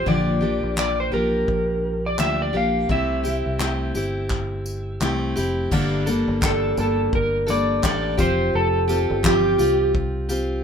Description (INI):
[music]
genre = acoustic pop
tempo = 85 BPM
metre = 4/4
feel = swing 60% on 16ths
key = unclear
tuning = A4 = 440 Hz
[part]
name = electric slide guitar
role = melody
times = 0.0-9.9 s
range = G4 to F5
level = -22 LUFS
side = right 1 dB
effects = none
[part]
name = picked steel-string acoustic guitar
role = accompaniment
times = 0.0-10.6 s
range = G2 to A4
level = -24 LUFS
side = left 2 dB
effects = none
[part]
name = fingered electric bass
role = bass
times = 0.0-10.6 s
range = F1 to D2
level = -26 LUFS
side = right 1 dB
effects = none
[part]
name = unplugged drum kit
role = drums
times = 0.1-10.5 s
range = crash cymbal, handclaps, kick drum, tambourine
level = -27 LUFS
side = left 1 dB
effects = none
[sound]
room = light reverb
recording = minimal, uncompressed stereo recording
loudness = -19 LUFS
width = side -7 dB against mid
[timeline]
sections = 0.0-5.7 A section; 5.7-10.6 B section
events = none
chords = 0.1 Bb6; 2.9 C6; 5.7 Gmadd9; 8.2 Fsus2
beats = | 0.06 0.77 1.48 2.19 | 2.89 3.60 4.30 5.01 | 5.71 6.42 7.12 7.83 | 8.53 9.24 9.94